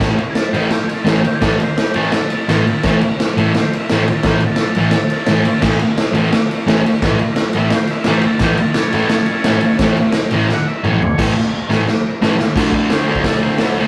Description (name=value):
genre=garage rock duo or trio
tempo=173 BPM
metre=4/4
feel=straight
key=unclear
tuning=A4 = 438 Hz
part: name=thick fuzz guitar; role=riff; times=0.0-13.9 s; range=A2 to D4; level=-18 LUFS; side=equal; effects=distortion
part: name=raw garage drum kit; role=drums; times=0.0-13.7 s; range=crash cymbal, hi-hat, kick drum, ride cymbal, snare drum, toms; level=-19 LUFS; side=equal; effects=none
part: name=combo organ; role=melody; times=0.3-13.9 s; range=C#4 to F#5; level=-27 LUFS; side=equal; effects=none
room=moderate studio reverb, RT60 0.6 s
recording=rough rehearsal-room recording, tube saturation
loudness=-16 LUFS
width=mono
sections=0.0-11.2 A section; 11.2-12.6 B section; 12.6-13.9 C section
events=drum fill 10.5-11.2, 11.2-12.6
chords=0.0 A; 12.6 D5